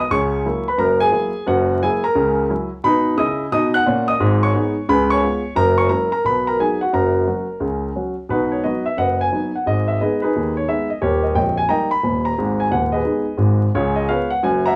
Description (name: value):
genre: jazz, stride piano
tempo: 176 BPM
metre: 4/4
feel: swing 64% on 8ths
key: B major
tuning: A4 = 440 Hz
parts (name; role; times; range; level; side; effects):
- warm grand piano; solo; 0.0-14.8 s; A#0 to F#6; -19 LUFS; equal; none
room: moderate studio ambience, RT60 0.5 s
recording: band playing live in one room, vinyl crackle, faint mains hum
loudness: -19 LUFS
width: mono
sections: 0.0-8.3 A section; 8.3-14.8 B section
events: none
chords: 0.1 F#7/C#; 1.5 F#7; 2.2 F#7/C#; 2.8 B; 4.2 G#m; 4.9 C#7; 5.6 F#7; 6.2 B; 6.9 F#; 8.3 B; 9.6 G#m; 11.0 D#7; 12.4 G#m; 13.7 C#7